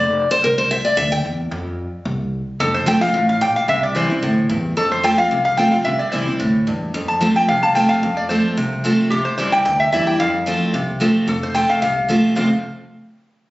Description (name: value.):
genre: bluegrass.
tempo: 221 BPM.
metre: 4/4.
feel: swing 53% on 8ths.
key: F major.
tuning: A4 = 443 Hz.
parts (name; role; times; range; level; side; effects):
picked steel-string acoustic guitar; accompaniment; 0.0-12.5 s; F2 to G5; -18 LUFS; equal; none.
upright bass; bass; 0.0-12.5 s; F1 to F2; -26 LUFS; equal; none.
lap resonator guitar; melody; 2.6-12.5 s; G4 to A5; -18 LUFS; equal; none.
room: light reverb.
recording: recorded on a phone in the room, studio reverb, compression, nothing above 7.7 kHz.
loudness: -15 LUFS.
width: side -18 dB against mid.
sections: 0.0-2.6 A section; 2.6-11.3 B section; 11.3-12.4 C section; 12.4-13.4 D section.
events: steel-string acoustic guitar solo 0.0-2.6.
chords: 0.4 C; 1.5 F5; 2.6 F; 3.7 C; 4.8 F; 5.9 C; 6.9 F; 9.1 C; 10.2 F; 12.4 F5.